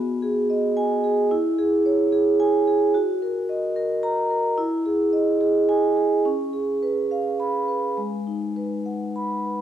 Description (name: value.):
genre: classical, contemporary piece for solo vibraphone.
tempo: 108 BPM.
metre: 3/4.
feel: uneven beats, rubato.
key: unclear.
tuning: A4 = 440 Hz.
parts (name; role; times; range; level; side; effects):
vibraphone with medium mallets; solo; 0.0-9.6 s; G#3 to B5; -20 LUFS; right 1 dB; none.
room: moderate concert hall reverb, RT60 1.8 s.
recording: none.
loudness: -20 LUFS.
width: side -10 dB against mid.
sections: 0.0-9.6 A section.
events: none.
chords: 0.0 B6; 1.3 E6; 2.9 F#6; 4.6 Emaj7; 6.2 C#7; 8.0 G#m7.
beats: 0.22 0.77 | 1.31 1.85 2.39 | 2.94 3.48 4.03 | 4.57 5.12 5.68 | 6.24 6.81 7.38 | 7.97 8.56 9.15.